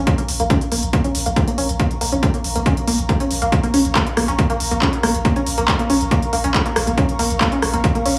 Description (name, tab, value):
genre	driving peak-time techno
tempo	139 BPM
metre	4/4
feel	straight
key	Bb minor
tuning	A4 = 439 Hz
part	saturated sub bass	bass	0.0-8.2 s	Bb1	-27 LUFS	equal	overdrive, sidechain pumping, low-pass filter
part	airy breathy pad	texture	0.0-8.2 s	Bb4 to Db6	-31 LUFS	equal	chorus, sidechain pumping
part	electronic kick drum	drums	0.1-7.9 s	none	-21 LUFS	equal	none
part	techno drum kit	drums	0.1-8.1 s	handclaps, hi-hat, rim click	-25 LUFS	equal	sidechain pumping on hats
part	tight sequenced synth	riff	0.2-8.1 s	Bb3 to Db4	-24 LUFS	equal	chorus, cassette tape, sidechain pumping, tape echo
room	light reverb, digital ambience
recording	small room ambience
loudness	-18 LUFS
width	mono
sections	0.0-8.2 A section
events	fade-in on analog synth pad 0.0-8.2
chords	0.0 Bbm